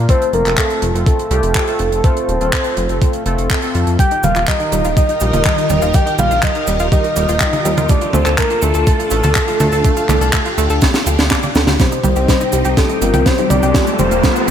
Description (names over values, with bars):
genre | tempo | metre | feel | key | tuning
italo disco | 123 BPM | 4/4 | straight | unclear | A4 = 437 Hz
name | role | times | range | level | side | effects
chorused polysynth | stabs | 0.0-4.0, 11.8-14.5 s | C3 to A4 | -22 LUFS | left 2 dB | none
chorused synth bass | bass | 0.0-14.5 s | Eb1 to F2 | -18 LUFS | equal | none
soft octave-layered synth lead | melody | 0.1-14.4 s | A4 to G5 | -18 LUFS | equal | chorus, vintage 12-bit sampler grit, digital delay
electronic kick drum | drums | 0.1-14.3 s | none | -16 LUFS | equal | none
tight funk drum kit | drums | 0.1-14.5 s | cabasa, handclaps, hi-hat, snare drum, toms | -19 LUFS | right 1 dB | gated reverb
phased string machine | sustained chords | 4.0-14.5 s | Eb3 to C5 | -22 LUFS | left 1 dB | ensemble chorus, phaser
analog pluck | arpeggios | 4.0-14.5 s | G3 to D5 | -22 LUFS | right 4 dB | chorus, tape echo
riser | sound effects | 13.0-14.5 s | none | -22 LUFS | equal | none
room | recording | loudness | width
light reverb, studio ambience | none | -12 LUFS | side -9 dB against mid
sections
0.0-11.8 A section; 11.8-14.5 B section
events
drum fill 10.8-11.8, 11.8-14.5; filter sweep on analog polysynth 11.8-14.5; riser 13.0-14.5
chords
0.1 F; 4.0 Ebadd9; 7.9 Dm; 11.8 Cm; 13.7 Fadd9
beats
| 0.09 0.58 1.07 1.55 | 2.04 2.53 3.02 3.50 | 3.99 4.48 4.97 5.46 | 5.95 6.43 6.92 7.41 | 7.90 8.38 8.87 9.36 | 9.85 10.34 10.82 11.31 | 11.80 12.29 12.77 13.26 | 13.75 14.24